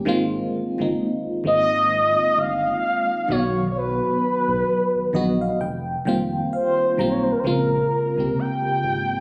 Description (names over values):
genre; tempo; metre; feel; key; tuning
contemporary R&B; 65 BPM; 4/4; swing 58% on 16ths; unclear; A4 = 439 Hz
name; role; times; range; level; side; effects
FM electric piano with tremolo; accompaniment; 0.0-9.2 s; Db3 to Bb5; -26 LUFS; equal; phaser
round analog bass; bass; 0.1-9.2 s; F1 to C2; -34 LUFS; equal; none
mellow horn-like synth lead; melody; 1.5-9.2 s; Bb4 to G5; -23 LUFS; equal; chorus, phaser, delay
room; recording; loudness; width
moderate lush hall reverb, RT60 2.3 s; recorded on a phone in the room, club reverb, nothing above 10.3 kHz; -22 LUFS; mono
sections
0.0-7.4 A section; 7.4-9.2 B section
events
FM electric piano fill 4.7-7.4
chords
0.1 Ab69; 3.3 Bmaj7; 5.6 F9sus4; 7.4 Bbm9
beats
| 0.07 0.99 1.91 2.83 | 3.76 4.68 5.60 6.53 | 7.45 8.37